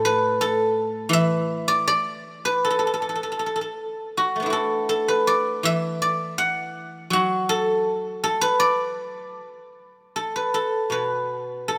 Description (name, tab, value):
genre	chinese traditional, Chinese solo plucked strings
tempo	80 BPM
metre	2/4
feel	rubato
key	unclear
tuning	A4 = 440 Hz
part	guzheng	solo	0.0-11.8 s	A2 to F#5	-23 LUFS	equal	none
room	moderate lush hall reverb, RT60 2.9 s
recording	rough home demo mix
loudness	-23 LUFS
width	mono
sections	0.0-10.2 A section; 10.2-11.8 B section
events	none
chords	none